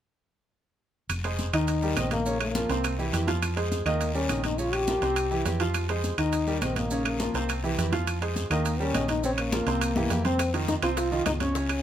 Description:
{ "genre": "latin, salsa", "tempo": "207 BPM", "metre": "4/4", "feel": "straight", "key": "F minor", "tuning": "A4 = 439 Hz", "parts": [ { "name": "hollow-body short-scale fingered electric bass", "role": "bass", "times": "1.1-11.8 s", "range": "F1 to F2", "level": "-30 LUFS", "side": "equal", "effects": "none" }, { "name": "claves", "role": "percussion", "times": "1.1-11.8 s", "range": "none", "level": "-39 LUFS", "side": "left 2 dB", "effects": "none" }, { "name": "congas", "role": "percussion", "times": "1.1-11.8 s", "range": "none", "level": "-36 LUFS", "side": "left 2 dB", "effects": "none" }, { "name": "guiro", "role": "percussion", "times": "1.1-11.8 s", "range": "none", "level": "-40 LUFS", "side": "left 6 dB", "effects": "none" }, { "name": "maracas", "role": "percussion", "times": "1.1-11.8 s", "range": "none", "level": "-42 LUFS", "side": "right 4 dB", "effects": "none" }, { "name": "timbales", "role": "percussion", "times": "1.1-11.8 s", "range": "none", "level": "-35 LUFS", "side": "right 9 dB", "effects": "none" }, { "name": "bright upright piano", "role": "accompaniment", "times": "1.2-11.8 s", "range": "C3 to F5", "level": "-30 LUFS", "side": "right 3 dB", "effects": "none" }, { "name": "mellow trombone", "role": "melody", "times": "1.5-11.8 s", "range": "Bb3 to G4", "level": "-29 LUFS", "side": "left 3 dB", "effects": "none" }, { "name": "bongos", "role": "percussion", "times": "10.4-11.8 s", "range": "none", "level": "-38 LUFS", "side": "left 9 dB", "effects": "none" } ], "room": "light reverb", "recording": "none", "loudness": "-24 LUFS", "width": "side -10 dB against mid", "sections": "1.1-10.4 A section; 10.4-11.8 B section", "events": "drum fill 10.0-10.4", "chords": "1.1 Fm; 1.7 Eb; 2.3 Bbm; 2.8 C; 3.4 Fm; 4.0 Eb; 4.6 Bbm; 5.2 C; 5.7 Fm; 6.3 Eb; 6.9 Bbm; 7.5 C; 8.1 Fm; 8.7 Eb; 9.2 Bbm; 9.8 C7; 10.4 F5", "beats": "| 1.10 1.39 1.68 1.97 | 2.26 2.55 2.85 3.14 | 3.43 3.72 4.01 4.30 | 4.59 4.88 5.17 5.46 | 5.75 6.04 6.33 6.62 | 6.91 7.20 7.49 7.78 | 8.07 8.36 8.65 8.94 | 9.23 9.52 9.81 10.10 | 10.39 10.68 10.97 11.26 | 11.55" }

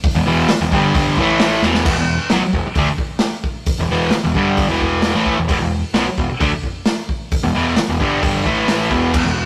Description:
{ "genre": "garage rock duo or trio", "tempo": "132 BPM", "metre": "4/4", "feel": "straight", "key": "unclear", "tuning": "A4 = 440 Hz", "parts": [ { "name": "raw garage drum kit", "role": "drums", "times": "0.0-9.2 s", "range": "crash cymbal, hi-hat, kick drum, snare drum", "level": "-22 LUFS", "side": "equal", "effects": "none" }, { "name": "growling picked electric bass", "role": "bass", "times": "0.1-9.5 s", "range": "E1 to D2", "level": "-26 LUFS", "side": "equal", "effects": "overdrive" }, { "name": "fuzz guitar", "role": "riff", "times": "0.2-9.4 s", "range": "E2 to A3", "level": "-19 LUFS", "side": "equal", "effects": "distortion" } ], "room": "light reverb", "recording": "rough rehearsal-room recording, tube saturation", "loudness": "-17 LUFS", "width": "mono", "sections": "0.0-1.9 A section; 1.9-9.5 B section", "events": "drum fill 1.6", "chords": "0.0 E5; 1.2 A5; 1.6 E5; 8.5 A5; 8.9 E5", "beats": "| 0.04 0.49 0.95 1.40 | 1.86 2.31 2.77 3.22 | 3.67 4.13 4.58 5.04 | 5.50 5.95 6.41 6.86 | 7.32 7.77 8.23 8.68 | 9.14" }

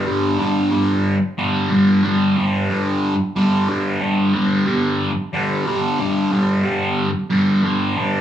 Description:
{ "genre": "rock", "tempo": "61 BPM (dotted quarters)", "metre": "6/8", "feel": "straight", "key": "unclear", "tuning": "A4 = 440 Hz", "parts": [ { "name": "fuzz guitar", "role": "solo", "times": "0.0-8.2 s", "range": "G2 to G3", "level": "-16 LUFS", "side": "equal", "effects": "distortion, phaser" } ], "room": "wet large studio reverb, RT60 0.9 s", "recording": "band playing live in one room, small room ambience", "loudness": "-16 LUFS", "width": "side -10 dB against mid", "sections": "0.0-8.2 A section", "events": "none", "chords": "0.0 G5", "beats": "| 0.39 1.38 | 2.37 3.36 | 4.35 5.34 | 6.33 7.32" }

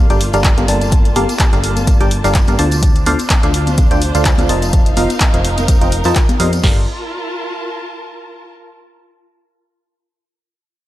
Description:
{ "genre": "piano house", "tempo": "126 BPM", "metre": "4/4", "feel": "swing 55% on 16ths", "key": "G minor", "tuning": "A4 = 439 Hz", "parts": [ { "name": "barking FM electric piano", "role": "riff", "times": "0.0-6.8 s", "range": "D3 to A5", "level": "-19 LUFS", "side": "equal", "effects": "chorus, phaser, tremolo, sidechain pumping, low-pass filter, tape echo" }, { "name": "plucky analog bass", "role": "bass", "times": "0.0-6.9 s", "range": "F1 to G2", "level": "-18 LUFS", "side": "equal", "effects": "sidechain pumping" }, { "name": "warm studio string section", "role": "texture", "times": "0.0-8.5 s", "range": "Bb3 to A5", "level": "-25 LUFS", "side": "right 1 dB", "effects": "sidechain pumping" }, { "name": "punchy analog drum machine", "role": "drums", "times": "0.1-6.6 s", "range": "handclaps, hi-hat", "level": "-21 LUFS", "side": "equal", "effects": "none" }, { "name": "tambourine and congas", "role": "percussion", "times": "0.1-6.6 s", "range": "none", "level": "-25 LUFS", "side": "left 3 dB", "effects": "none" }, { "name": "punchy analog drum machine", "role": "drums", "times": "0.4-6.8 s", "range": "crash cymbal, kick drum, snare drum", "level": "-13 LUFS", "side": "equal", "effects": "none" } ], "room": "light reverb, small room ambience", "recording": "dark, warm production", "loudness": "-11 LUFS", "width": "side -15 dB against mid", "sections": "0.0-6.6 A section; 6.6-8.5 B section", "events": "none", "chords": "0.0 Gm9; 2.6 Dm7; 4.5 F7sus4; 6.6 Gm9", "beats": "0.45 | 0.92 1.40 1.87 2.35 | 2.83 3.30 3.78 4.25 | 4.73 5.21 5.68 6.16 | 6.64 7.11 7.59 8.06" }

